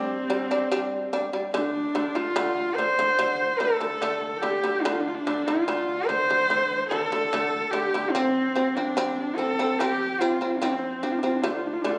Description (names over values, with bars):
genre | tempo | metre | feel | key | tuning
mongolian traditional | 73 BPM | 4/4 | straight | D yu mode | A4 = 440 Hz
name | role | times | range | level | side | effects
bright horsehead fiddle | melody | 0.0-12.0 s | C4 to C5 | -27 LUFS | equal | none
shamisen | arpeggios | 0.0-12.0 s | D3 to D4 | -29 LUFS | equal | none
room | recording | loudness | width
wet recital hall reverb, RT60 1.4 s | recorded on a phone in the room, club reverb | -25 LUFS | mono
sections
0.0-12.0 A section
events
none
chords
0.0 G5; 1.5 D5; 8.2 F5; 11.4 D5